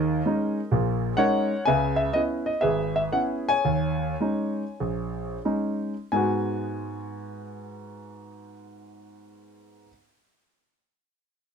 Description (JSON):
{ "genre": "solo jazz", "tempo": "85-130 BPM", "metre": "4/4", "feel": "swing 68% on 8ths, rubato", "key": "G# minor", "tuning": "A4 = 440 Hz", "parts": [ { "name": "warm grand piano", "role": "solo", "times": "0.0-9.9 s", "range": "G#1 to G#5", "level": "-24 LUFS", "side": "equal", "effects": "none" } ], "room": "moderate studio reverb, RT60 0.5 s", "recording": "none", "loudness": "-23 LUFS", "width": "side -6 dB against mid", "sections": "0.0-6.1 A section; 6.1-11.5 B section", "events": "slowing down 1.7-6.1", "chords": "0.0 D#7sus4; 1.7 C#m7; 3.6 D#7sus4; 6.1 G#m7" }